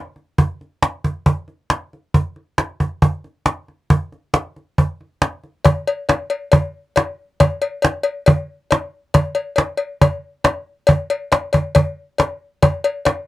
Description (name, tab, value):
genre	rock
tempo	137 BPM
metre	4/4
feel	straight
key	none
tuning	none
part	cajon	drums	0.2-13.2 s	none	-15 LUFS	right 1 dB	none
part	cowbell	percussion	5.6-13.2 s	none	-19 LUFS	left 4 dB	none
room	little or no reverb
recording	dry, close 1970s-style studio recording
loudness	-17 LUFS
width	side -16 dB against mid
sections	0.0-5.6 A section; 5.6-13.3 B section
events	none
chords	none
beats	| 0.38 0.82 1.26 1.70 | 2.14 2.58 3.01 3.45 | 3.89 4.33 4.77 5.21 | 5.64 6.08 6.52 6.96 | 7.39 7.83 8.27 8.70 | 9.14 9.57 10.01 10.45 | 10.88 11.32 11.75 12.19 | 12.62 13.06